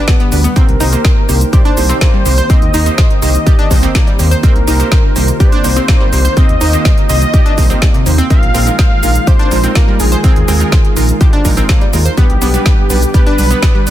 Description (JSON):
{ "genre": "progressive house", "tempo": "124 BPM", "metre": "4/4", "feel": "straight", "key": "C minor", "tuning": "A4 = 441 Hz", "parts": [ { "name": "wide unison lead", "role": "melody", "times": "0.0-13.9 s", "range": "G4 to F5", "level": "-19 LUFS", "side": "equal", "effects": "tape echo" }, { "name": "lush unison pad", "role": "sustained chords", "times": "0.0-13.9 s", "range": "D3 to G4", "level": "-22 LUFS", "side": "left 1 dB", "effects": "chorus, sidechain pumping" }, { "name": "analog pluck", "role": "arpeggios", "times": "0.0-13.8 s", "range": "C3 to C5", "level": "-20 LUFS", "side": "equal", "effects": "chorus, sidechain pumping, digital delay" }, { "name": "wide unison pluck", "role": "stabs", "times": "0.0-13.9 s", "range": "G3 to D5", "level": "-20 LUFS", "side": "right 5 dB", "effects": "sidechain pumping, digital delay" }, { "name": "deep house drum kit", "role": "drums", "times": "0.1-13.9 s", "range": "hi-hat, shaker, snare drum", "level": "-19 LUFS", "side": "equal", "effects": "studio reverb" }, { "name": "electronic kick drum", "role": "drums", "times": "0.1-13.7 s", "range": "none", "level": "-10 LUFS", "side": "equal", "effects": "studio reverb" }, { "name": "dark detuned saw bass", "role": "bass", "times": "0.3-13.9 s", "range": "Bb1 to Eb2", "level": "-13 LUFS", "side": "equal", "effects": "sidechain pumping" } ], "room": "little or no reverb", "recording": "dense, heavily limited modern master", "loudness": "-8 LUFS", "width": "side -12 dB against mid", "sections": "0.0-13.9 A section", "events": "none", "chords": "0.0 G; 0.6 Cm7; 8.3 Bb7sus4; 12.2 G/B" }